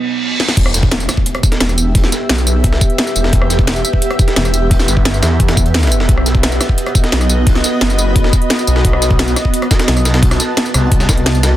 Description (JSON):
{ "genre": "dark technical drum and bass", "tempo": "174 BPM", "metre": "4/4", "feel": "straight", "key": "E harmonic minor", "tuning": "A4 = 440 Hz", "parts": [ { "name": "deep dark ambient pad", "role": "sustained chords", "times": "0.0-11.6 s", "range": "B3 to E5", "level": "-22 LUFS", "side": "right 2 dB", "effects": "chorus, built-in reverb, sidechain pumping" }, { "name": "reverse cymbal and impact", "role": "sound effects", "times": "0.0-1.9 s", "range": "none", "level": "-22 LUFS", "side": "right 1 dB", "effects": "none" }, { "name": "drum and bass drum kit", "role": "drums", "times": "0.4-11.5 s", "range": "crash cymbal, hi-hat, rim click, snare drum, tambourine", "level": "-18 LUFS", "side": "equal", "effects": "soft clipping on snare" }, { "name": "phased detuned saw bass", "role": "bass", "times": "0.6-11.6 s", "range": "E1 to E2", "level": "-15 LUFS", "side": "equal", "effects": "phaser, overdrive" }, { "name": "breakbeat sampler-style drum kit", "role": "drums", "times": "0.6-11.5 s", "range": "hi-hat, snare drum", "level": "-23 LUFS", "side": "equal", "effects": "high-pass filter on hats, high-pass filter on snare" }, { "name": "electronic kick drum", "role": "drums", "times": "0.6-11.2 s", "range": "none", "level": "-13 LUFS", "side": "equal", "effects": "none" }, { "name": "granular cloud pad", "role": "texture", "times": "1.3-11.6 s", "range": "B3 to B5", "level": "-21 LUFS", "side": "right 1 dB", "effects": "built-in reverb, sidechain pumping" } ], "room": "light reverb", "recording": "dense, heavily limited modern master", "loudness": "-11 LUFS", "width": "side -14 dB against mid", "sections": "0.6-11.6 A section", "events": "break 0.0-0.6; reverse cymbal 0.0-0.6; drum fill 0.4; drop 0.6-11.6; impact 0.6-1.9; kick drops out 11.3-11.6", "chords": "0.0 B; 0.6 Em; 6.1 B" }